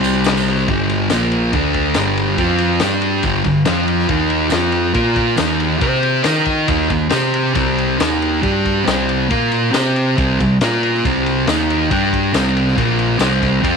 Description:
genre	garage rock duo or trio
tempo	139 BPM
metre	4/4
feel	straight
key	unclear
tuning	A4 = 440 Hz
part	fuzz guitar	riff	0.0-13.8 s	G2 to Eb5	-15 LUFS	equal	distortion
part	picked electric bass	bass	0.0-13.8 s	G1 to Eb3	-23 LUFS	equal	none
part	crunchy breakbeat drum kit	drums	0.0-13.7 s	crash cymbal, kick drum, ride cymbal, snare drum	-22 LUFS	left 3 dB	none
part	tambourine	percussion	0.0-13.3 s	none	-31 LUFS	right 13 dB	none
room	moderate echo chamber reverb, RT60 1.3 s, small room ambience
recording	1960s-style stereo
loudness	-14 LUFS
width	side -5 dB against mid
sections	0.7-13.8 A section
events	none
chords	0.0 C5; 0.7 G5; 1.1 Bb5; 1.5 D5; 2.0 G5; 2.4 F5; 2.8 G5; 3.7 F5; 4.1 Eb5; 4.5 F5; 5.0 Bb5; 5.4 Eb5; 5.8 C5; 6.3 Eb5; 7.1 C5; 8.0 Eb5; 8.4 G5; 8.9 C5; 9.3 Bb5; 9.7 C5; 10.6 Bb5; 11.0 C5; 11.5 Eb5; 11.9 G5; 12.3 C5; 12.8 Bb5; 13.2 C5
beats	0.25 | 0.68 1.10 1.53 1.95 | 2.38 2.81 3.23 3.66 | 4.09 4.52 4.96 5.39 | 5.82 6.25 6.69 7.12 | 7.56 7.99 8.43 8.86 | 9.30 9.73 10.17 10.60 | 11.04 11.47 11.91 12.34 | 12.77 13.21 13.64

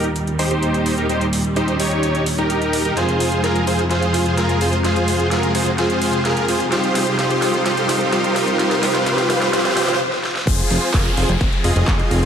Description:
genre	EDM, festival progressive house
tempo	128 BPM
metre	4/4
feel	straight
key	F minor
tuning	A4 = 440 Hz
part	warm studio string section	sustained chords	0.0-12.3 s	Eb2 to Ab4	-22 LUFS	equal	sidechain pumping
part	dense compressed supersaw	riff	0.0-12.3 s	Eb4 to Eb5	-19 LUFS	equal	sidechain pumping, low-pass filter, tape echo
part	big-room dance drum kit	drums	0.0-12.3 s	crash cymbal, handclaps, hi-hat, snare drum	-25 LUFS	equal	overdrive, high-pass filter on hats, small room ambience, high-pass filter on snare, high-pass filter on cymbals
part	riser and downlifter	sound effects	0.2-12.3 s	none	-26 LUFS	equal	none
part	fat analog bass	bass	10.5-12.3 s	F1	-19 LUFS	equal	sidechain pumping
part	electronic kick drum	drums	10.5-12.0 s	none	-19 LUFS	equal	overdrive, small room ambience
room	moderate scoring stage reverb, RT60 2.0 s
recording	none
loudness	-16 LUFS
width	side -8 dB against mid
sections	0.0-10.5 A section; 10.5-12.3 B section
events	build-up 0.0-10.5; riser 0.2-10.0; drum fill 3.0-10.0, 10.1-10.5; stop 10.0-10.5; drop 10.5-12.3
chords	0.0 Eb; 3.0 Fm; 6.7 Cm; 10.5 Fm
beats	0.16 0.63 | 1.10 1.56 2.03 2.50 | 2.97 3.44 3.91 4.38 | 4.85 5.31 5.78 6.25 | 6.72 7.19 7.66 8.13 | 8.60 9.06 9.53 10.00 | 10.47 10.94 11.41 11.88

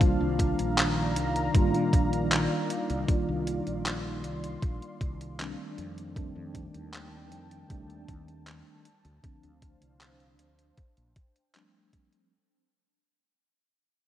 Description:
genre	vaporwave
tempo	78 BPM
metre	4/4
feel	straight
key	C dorian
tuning	A4 = 441 Hz
part	mellow tine electric piano	accompaniment	0.0-12.3 s	D3 to F4	-32 LUFS	equal	medium stereo tremolo, wide subtle chorus, analog delay
part	lush unison pad	sustained chords	0.0-12.3 s	Eb3 to C6	-34 LUFS	equal	chorus
part	mellow fretless electric bass	bass	0.0-11.1 s	Bb1 to Bb2	-36 LUFS	equal	wide subtle chorus
part	detuned 8-bit digital drum machine	drums	0.0-12.3 s	handclaps, hi-hat	-31 LUFS	equal	overdrive
part	electronic kick drum	drums	0.0-12.1 s	none	-26 LUFS	equal	overdrive
room	moderate lush hall reverb, RT60 2.5 s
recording	rough home demo mix, cassette tape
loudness	-26 LUFS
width	side -12 dB against mid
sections	0.0-12.3 A section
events	fade-out 0.0-12.3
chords	0.0 Cm11; 5.8 F13; 8.9 Dm7; 10.8 Bbmaj13 (rootless)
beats	| 0.01 0.78 1.55 2.31 | 3.08 3.85 4.62 5.39 | 6.16 6.93 7.70 8.47 | 9.24 10.01 10.78 11.55

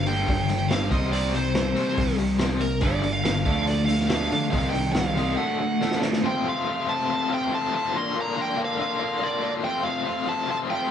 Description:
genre	classic rock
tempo	141 BPM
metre	4/4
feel	straight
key	unclear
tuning	A4 = 439 Hz
part	bluesy overdriven lead guitar	melody	0.0-10.9 s	Bb4 to C6	-28 LUFS	right 2 dB	distortion
part	biting overdriven guitar	riff	0.0-10.9 s	F2 to F4	-26 LUFS	left 4 dB	tremolo
part	crunchy overdriven guitar	riff	0.0-6.2 s	G2 to Eb4	-29 LUFS	right 4 dB	none
part	growling picked electric bass	bass	0.0-5.3 s	G1 to D3	-28 LUFS	right 1 dB	overdrive
part	vintage drum kit	drums	0.1-6.2 s	hi-hat, kick drum, snare drum	-28 LUFS	equal	none
part	bright tonewheel organ	sustained chords	6.2-10.9 s	C4 to F5	-36 LUFS	equal	slow rotary speaker, overdrive, chorus vibrato
room	moderate studio ambience, RT60 0.5 s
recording	band playing live in one room, nothing above 10.7 kHz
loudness	-22 LUFS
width	side -9 dB against mid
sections	0.0-6.2 A section; 6.2-10.9 B section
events	drum fill 5.8-6.2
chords	0.0 Gm; 0.9 Cm; 2.8 Gm; 3.5 Dm; 4.5 Cm; 5.4 D; 6.2 F; 7.9 Bb; 9.6 F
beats	0.29 0.71 | 1.14 1.56 1.99 2.41 | 2.84 3.26 3.69 4.12 | 4.54 4.97 5.39 5.82 | 6.24 6.67 7.09 7.51 | 7.94 8.36 8.79 9.21 | 9.64 10.06 10.48 10.91

